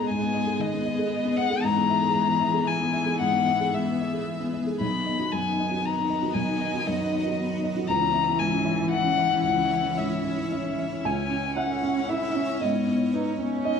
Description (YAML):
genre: neoclassical piano and strings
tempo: 116 BPM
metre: 3/4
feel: rubato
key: unclear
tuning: A4 = 442 Hz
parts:
  - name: muted violin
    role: melody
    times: 0.0-13.8 s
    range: D#5 to B5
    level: -27 LUFS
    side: left 7 dB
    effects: none
  - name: muted cello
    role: second line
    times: 0.0-13.8 s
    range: D#3 to E4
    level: -31 LUFS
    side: right 3 dB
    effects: none
  - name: felt-muted upright piano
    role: accompaniment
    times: 0.0-13.8 s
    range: B1 to G#5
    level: -27 LUFS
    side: left 1 dB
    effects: none
  - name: granular cloud pad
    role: sustained chords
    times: 0.0-13.8 s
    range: B3 to E5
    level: -34 LUFS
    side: right 1 dB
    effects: built-in reverb
room: moderate recital hall reverb, RT60 1.5 s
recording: none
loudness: -23 LUFS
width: side -6 dB against mid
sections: 0.0-11.1 A section; 11.1-13.8 B section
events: none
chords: 0.0 G#m; 1.6 E/G#; 4.8 B; 7.9 C#m; 12.6 G#m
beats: | 0.09 0.60 1.12 | 1.63 2.14 2.66 | 3.20 3.73 4.27 | 4.80 5.33 5.85 | 6.36 6.87 7.37 | 7.88 8.39 8.91 | 9.44 9.98 10.52 | 11.06 11.57 12.10 | 12.62 13.14 13.65